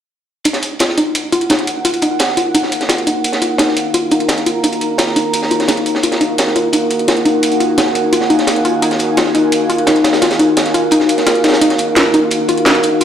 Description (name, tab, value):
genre	dark technical drum and bass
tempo	172 BPM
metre	4/4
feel	straight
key	Eb minor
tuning	A4 = 440 Hz
part	crunchy breakbeat drum kit	drums	0.4-13.0 s	hi-hat, snare drum	-19 LUFS	right 1 dB	high-pass filter on hats, high-pass filter on snare, high-pass filter on room
part	deep dark ambient pad	sustained chords	1.2-13.0 s	Eb4 to Bb5	-16 LUFS	equal	chorus, built-in reverb
part	warbly dusty pluck	arpeggios	0.5-13.0 s	Eb4 to F4	-16 LUFS	left 1 dB	chorus, digital delay
part	drum and bass drum kit	drums	0.5-13.0 s	hi-hat, snare drum	-19 LUFS	equal	none
part	airy breathy pad	texture	0.5-13.0 s	Eb4 to Ab5	-25 LUFS	equal	chorus
room	moderate plate reverb, RT60 1.9 s, small room ambience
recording	played on a big sound system in a bare room, large studio reverb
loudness	-12 LUFS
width	side -9 dB against mid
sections	0.5-13.0 A section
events	fade-in on analog synth pad 0.5-13.0; filter sweep on synth arpeggio sound 0.5-13.0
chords	0.5 Ebmadd9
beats	| 0.45 0.80 1.15 1.50 | 1.85 2.20 2.55 2.90 | 3.24 3.59 3.94 4.29 | 4.64 4.99 5.34 5.68 | 6.03 6.38 6.73 7.08 | 7.43 7.78 8.13 8.48 | 8.82 9.17 9.52 9.87 | 10.22 10.57 10.92 11.27 | 11.62 11.96 12.31 12.66 | 13.01